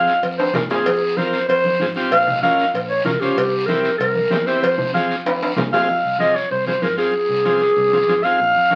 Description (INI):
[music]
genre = latin, cumbia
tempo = 191 BPM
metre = 4/4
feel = straight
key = F harmonic minor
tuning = A4 = 440 Hz
[part]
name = growling clarinet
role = melody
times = 0.0-8.8 s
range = G4 to F5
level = -19 LUFS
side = equal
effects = none
[part]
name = combo organ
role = accompaniment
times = 0.0-8.8 s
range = C4 to C5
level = -26 LUFS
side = equal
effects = none
[part]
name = fingered electric bass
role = bass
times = 0.0-8.8 s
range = Bb1 to Ab2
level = -34 LUFS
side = equal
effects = none
[part]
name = guiro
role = percussion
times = 0.1-8.8 s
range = none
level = -34 LUFS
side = equal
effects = none
[part]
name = cowbell and timbales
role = percussion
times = 0.2-5.8 s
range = none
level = -25 LUFS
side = equal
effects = none
[part]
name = congas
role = percussion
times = 0.5-8.8 s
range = none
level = -31 LUFS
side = equal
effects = none
[sound]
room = wet studio reverb, RT60 0.5 s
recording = very old 78 rpm record, vinyl crackle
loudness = -18 LUFS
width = mono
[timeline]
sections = 0.0-5.9 A section; 5.9-8.8 B section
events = drum fill 0.4-0.9, 5.3-5.9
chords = 0.0 Fm; 2.1 Bbm; 3.4 C7; 4.6 Fm